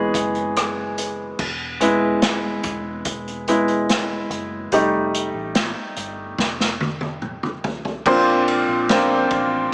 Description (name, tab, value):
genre	pop ballad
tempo	72 BPM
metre	4/4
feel	straight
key	unclear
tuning	A4 = 440 Hz
part	bright upright piano	accompaniment	0.0-9.7 s	Bb2 to C#5	-22 LUFS	equal	none
part	vintage muted fingered electric bass	bass	0.0-9.7 s	E1 to Bb1	-39 LUFS	equal	none
part	unplugged drum kit	drums	0.1-9.5 s	crash cymbal, hi-hat, kick drum, ride cymbal, rim click, snare drum, toms	-26 LUFS	equal	none
room	moderate lush hall reverb, RT60 2.5 s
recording	small speaker sound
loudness	-21 LUFS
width	mono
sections	0.0-1.4 A section; 1.4-8.1 B section; 8.1-9.7 C section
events	upright piano solo 0.0-1.4, 1.4-8.1; drum fill 6.4-8.1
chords	0.0 E; 4.7 F7; 8.1 Bbadd9